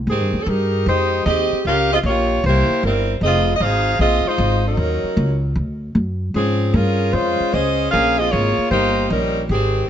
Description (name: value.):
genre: jazz, big band swing.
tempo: 153 BPM.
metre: 4/4.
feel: swing 67% on 8ths.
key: Ab major.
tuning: A4 = 440 Hz.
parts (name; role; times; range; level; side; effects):
upright bass; bass; 0.0-9.9 s; F1 to Ab2; -20 LUFS; equal; none.
dark saxophone section; melody; 0.1-9.9 s; Eb3 to F5; -18 LUFS; equal; none.
room: moderate echo chamber reverb, RT60 1.6 s.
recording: nothing above 7.8 kHz.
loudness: -16 LUFS.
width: side -9 dB against mid.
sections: 0.1-9.9 A section.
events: none.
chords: 0.1 Abmaj7; 1.6 Gm7b5; 2.4 C7; 3.2 Fm7; 4.8 Ebm7; 5.6 D; 6.3 Dbmaj7; 7.9 Bbm7; 8.7 Eb7.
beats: | 0.08 0.47 0.86 1.25 | 1.64 2.04 2.43 2.82 | 3.21 3.60 4.00 4.39 | 4.78 5.17 5.56 5.96 | 6.35 6.74 7.13 7.53 | 7.92 8.31 8.70 9.10 | 9.49.